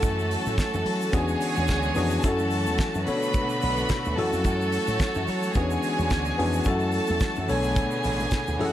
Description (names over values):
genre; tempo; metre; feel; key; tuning
disco; 108 BPM; 4/4; swing 56% on 16ths; F# minor; A4 = 440 Hz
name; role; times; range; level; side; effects
rich studio violin section; second line; 0.0-8.7 s; F#4 to B5; -29 LUFS; right 2 dB; slapback echo
tine electric piano; accompaniment; 0.0-8.7 s; B2 to C#5; -27 LUFS; left 2 dB; none
rich studio string section; sustained chords; 0.0-8.7 s; D3 to C#5; -32 LUFS; right 1 dB; none
slap bass with an envelope filter; bass; 0.0-8.7 s; A1 to F#3; -29 LUFS; right 1 dB; none
damped 70s drum kit; drums; 0.0-8.7 s; hi-hat, kick drum, snare drum; -29 LUFS; equal; none
congas; percussion; 0.0-8.7 s; none; -40 LUFS; left 4 dB; none
egg shaker; percussion; 0.0-8.6 s; none; -46 LUFS; right 8 dB; none
room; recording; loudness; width
small room ambience; none; -22 LUFS; side -12 dB against mid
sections
0.0-8.7 A section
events
none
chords
0.0 F#m7; 1.1 E13; 2.2 F#m7; 3.1 Bm7; 4.2 F#m7; 5.6 E13; 6.7 F#m7; 7.5 Bm7